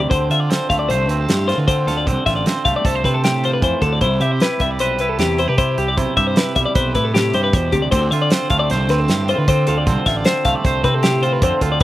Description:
math rock and midwest emo; 154 BPM; 5/4; straight; A4 = 441 Hz
twangy electric guitar; accompaniment; 0.0-11.8 s; A2 to C5; -22 LUFS; right 6 dB
twelve-string electric guitar; arpeggios; 0.0-11.8 s; G4 to F5; -19 LUFS; left 4 dB; slapback echo
fuzz fingered electric bass; bass; 0.0-11.8 s; A1 to D3; -20 LUFS; equal; overdrive
loose indie drum kit; drums; 0.1-11.8 s; hi-hat, kick drum, snare drum; -19 LUFS; right 1 dB
little or no reverb; recorded outdoors, with no room sound; -15 LUFS; side -15 dB against mid
0.1-11.8 A section
0.1 Dm7; 4.0 Cmaj7; 7.9 Dm7
| 0.11 0.50 0.90 1.29 1.68 | 2.07 2.46 2.85 3.25 3.64 | 4.03 4.42 4.81 5.20 5.59 | 5.98 6.37 6.76 7.14 7.53 | 7.92 8.31 8.70 9.09 9.48 | 9.87 10.26 10.64 11.03 11.42 | 11.81

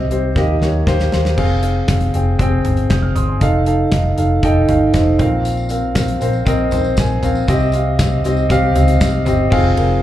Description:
piano-driven pop; 118 BPM; 4/4; straight; F minor; A4 = 440 Hz
dark upright piano; accompaniment; 0.0-10.0 s; Bb2 to G6; -17 LUFS; equal; slapback echo
vintage muted fingered electric bass; bass; 0.0-10.0 s; F1 to Eb2; -17 LUFS; equal
modern studio drum kit; drums; 0.1-9.9 s; crash cymbal, hi-hat, kick drum, ride cymbal, snare drum, toms; -20 LUFS; equal
tambourine; percussion; 5.5-9.4 s; -36 LUFS; left 2 dB
studio ambience; live gig heard through the venue's PA, club reverb; -13 LUFS; side -12 dB against mid
0.0-1.4 A section; 1.4-9.5 B section
drum fill 0.4-1.4
0.4 Eb; 1.4 Fm; 3.4 F7; 5.2 Bbsus2; 7.5 Cm; 9.5 Fm
0.36 0.87 | 1.38 1.89 2.40 2.90 | 3.41 3.92 4.43 4.94 | 5.45 5.96 6.47 6.98 | 7.49 7.99 8.50 9.01 | 9.52

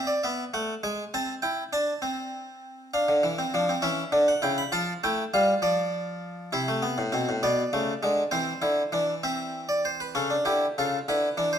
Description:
classical, baroque-style 3-part fugue for harpsichord; 66 BPM (dotted quarters); 6/8; straight; A4 = 440 Hz
harpsichord; solo; 0.0-11.6 s; A2 to B5; -24 LUFS; equal
moderate recital hall reverb, RT60 1.3 s; close, detailed microphones; -24 LUFS; side -8 dB against mid
0.0-10.2 A section; 10.2-11.6 B section
0.2 F#m11; 1.1 Am/C; 2.9 Dm; 3.8 C#dim; 4.7 Fmaj9; 5.6 Dm/F; 6.5 Am/C; 7.4 G#dim/B; 8.3 Cadd9; 9.2 Cmaj9/E; 10.2 A7/C#; 11.1 N.C.
0.23 | 1.14 2.04 | 2.94 3.84 | 4.74 5.64 | 6.54 7.43 | 8.33 9.24 | 10.16 11.08

